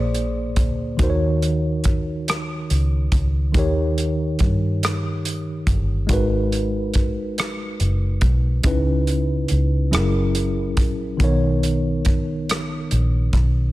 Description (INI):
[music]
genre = slow six-eight R&B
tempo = 47 BPM (dotted quarters)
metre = 6/8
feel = straight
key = unclear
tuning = A4 = 440 Hz
[part]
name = tine electric piano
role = accompaniment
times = 0.0-13.7 s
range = A#2 to D5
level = -23 LUFS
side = equal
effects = medium stereo tremolo
[part]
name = vintage muted fingered electric bass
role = bass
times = 0.0-13.7 s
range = F#1 to G2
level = -22 LUFS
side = equal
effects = none
[part]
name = warm soul drum kit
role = drums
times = 0.1-13.5 s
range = hi-hat, kick drum, rim click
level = -22 LUFS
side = equal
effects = none
[sound]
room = light reverb, studio ambience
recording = none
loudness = -18 LUFS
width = side -17 dB against mid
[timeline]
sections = 0.0-13.7 A section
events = none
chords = 0.0 A#7; 1.0 D#m7; 3.5 D#7; 6.1 G#m7; 8.7 C#m7; 9.9 F#7; 11.2 Bmaj7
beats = | 0.99 2.27 | 3.54 4.82 | 6.10 7.37 | 8.65 9.93 | 11.20 12.48